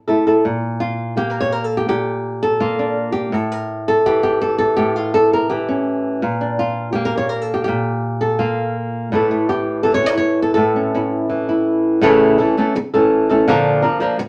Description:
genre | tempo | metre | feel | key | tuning
flamenco | 166 BPM | 4/4 | straight | A phrygian dominant | A4 = 439 Hz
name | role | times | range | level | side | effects
flamenco guitar | solo | 0.1-14.2 s | A2 to D5 | -18 LUFS | equal | none
room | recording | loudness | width
wet studio reverb, RT60 0.5 s | none | -18 LUFS | mono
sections
0.4-12.0 A section; 12.0-14.3 B section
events
none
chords
0.4 Bb; 3.3 A; 6.2 Bb; 9.1 A; 13.5 Bb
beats
0.09 | 0.45 0.81 1.17 1.53 | 1.89 2.25 2.61 2.97 | 3.33 3.69 4.05 4.41 | 4.77 5.14 5.50 5.86 | 6.22 6.58 6.95 7.31 | 7.67 8.04 8.40 8.76 | 9.12 9.49 9.85 10.21 | 10.57 10.94 11.30 11.66 | 12.02 12.38 12.74 13.10 | 13.46 13.82 14.18

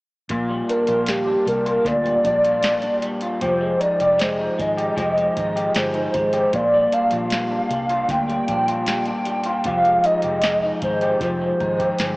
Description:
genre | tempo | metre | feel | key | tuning
indie pop, bedroom pop | 77 BPM | 4/4 | straight | Bb mixolydian | A4 = 441 Hz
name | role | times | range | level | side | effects
electric guitar through a small old amp | accompaniment | 0.3-12.2 s | Bb2 to G4 | -23 LUFS | left 1 dB | analog chorus, vibrato effect, cassette tape
vintage muted fingered electric bass | bass | 0.3-12.2 s | F1 to D2 | -32 LUFS | equal | none
soft vintage rhythm box | drums | 0.3-12.2 s | hi-hat, kick drum, snare drum | -28 LUFS | equal | cassette tape
hollow clarinet-like synth lead | melody | 0.7-12.2 s | G4 to G5 | -20 LUFS | equal | phaser, ensemble chorus, cassette tape
room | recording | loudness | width
light reverb | home recording on cassette, small speaker sound | -18 LUFS | side -23 dB against mid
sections
0.3-12.2 A section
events
none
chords
0.3 Bb6; 3.4 Fm9; 6.5 Bb6; 9.7 Fm9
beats
| 0.30 1.08 1.86 2.64 | 3.42 4.20 4.98 5.76 | 6.54 7.32 8.10 8.88 | 9.65 10.43 11.21 11.99

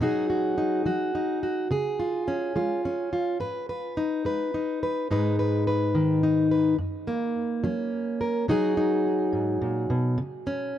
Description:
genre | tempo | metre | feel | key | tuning
folk | 71 BPM (dotted quarters) | 6/8 | straight | F# major | A4 = 440 Hz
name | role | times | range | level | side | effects
fingerpicked plugged-in steel-string acoustic guitar | solo | 0.0-10.8 s | F#2 to B4 | -24 LUFS | equal | tape echo
room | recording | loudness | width
small room ambience | dry, close 1970s-style studio recording | -24 LUFS | side -10 dB against mid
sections
0.0-5.1 A section; 5.1-6.8 B section; 6.8-10.8 C section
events
none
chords
0.0 B6; 1.7 C#; 3.4 G#m; 6.8 F#; 8.5 B6; 10.2 C#5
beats
| 0.01 0.85 | 1.70 2.55 | 3.40 4.25 | 5.09 5.94 | 6.79 7.63 | 8.48 9.33 | 10.17

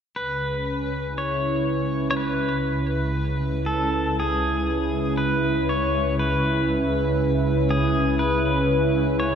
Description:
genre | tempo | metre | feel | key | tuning
ambient | 60 BPM | 4/4 | straight | unclear | A4 = 439 Hz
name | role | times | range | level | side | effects
pedal steel guitar | melody | 0.2-9.3 s | G#4 to C#5 | -25 LUFS | left 2 dB | ping-pong delay
warm analog pad | sustained chords | 0.2-9.3 s | C#3 to B4 | -23 LUFS | right 1 dB | chorus
dark studio double bass section | bass | 0.2-9.3 s | C#2 | -29 LUFS | equal | none
room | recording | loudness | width
wet lush hall reverb, RT60 2.7 s | dreamy mix soaked in reverb | -21 LUFS | side -7 dB against mid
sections
0.2-9.3 A section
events
none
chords
0.2 C#m7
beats
| 0.20 1.20 2.19 3.19 | 4.20 5.20 6.20 7.20 | 8.20 9.20

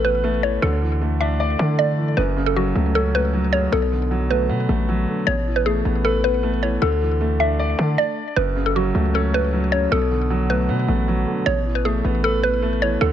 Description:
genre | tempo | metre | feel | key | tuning
hip hop, trap | 155 BPM | 4/4 | half-time | F# minor | A4 = 444 Hz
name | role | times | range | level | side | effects
mallet-like synth pluck | melody | 0.0-13.1 s | F#4 to E5 | -22 LUFS | equal | chorus, phaser, low-pass filter, ping-pong delay
dark baby grand piano | accompaniment | 0.0-13.1 s | F#2 to D5 | -23 LUFS | equal | low-pass filter
hard-hitting 808-style bass | bass | 0.0-13.1 s | F#1 to D3 | -22 LUFS | equal | none
room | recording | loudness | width
small room ambience | none | -18 LUFS | side -10 dB against mid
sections
0.0-8.4 A section; 8.4-13.1 B section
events
stop 8.0-8.4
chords
0.0 Asus2; 0.6 Dsus2; 2.2 F#m; 3.7 Bm7; 5.3 Asus2; 6.8 Dsus2; 8.4 F#m; 9.9 Bm7; 11.5 Asus2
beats
0.24 | 0.63 1.01 1.40 1.79 | 2.17 2.56 2.95 3.34 | 3.72 4.11 4.50 4.88 | 5.27 5.66 6.04 6.43 | 6.82 7.21 7.59 7.98 | 8.37 8.76 9.14 9.53 | 9.92 10.30 10.69 11.08 | 11.46 11.85 12.24 12.63 | 13.01

